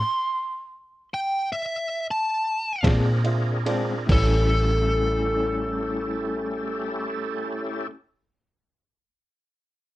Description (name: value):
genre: slow blues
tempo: 47-55 BPM (dotted quarters)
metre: 12/8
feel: straight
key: A mixolydian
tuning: A4 = 440 Hz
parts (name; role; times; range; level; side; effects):
- biting lead guitar; melody; 0.0-7.9 s; A4 to C6; -26 LUFS; equal; overdrive
- overdriven tonewheel organ; sustained chords; 0.0-7.9 s; C4 to Bb4; -32 LUFS; right 1 dB; slow rotary speaker, chorus vibrato
- dark upright piano; accompaniment; 2.8-7.9 s; E4 to E5; -32 LUFS; right 5 dB; none
- electric guitar through a small old amp; accompaniment; 2.8-8.0 s; A2 to E4; -30 LUFS; left 3 dB; tremolo
- vintage muted fingered electric bass; bass; 2.8-7.9 s; A1 to Bb2; -24 LUFS; equal; none
- trip hop sampler-style drum kit; drums; 2.8-4.3 s; crash cymbal, kick drum, ride cymbal, snare drum; -25 LUFS; equal; none
room: little or no reverb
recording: dark, warm production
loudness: -22 LUFS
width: side -16 dB against mid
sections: 0.0-4.1 A section; 4.1-9.2 B section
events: slowing down 0.0-4.1; stop 0.0-2.8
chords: 0.0 N.C.; 2.8 Bb9; 4.1 A7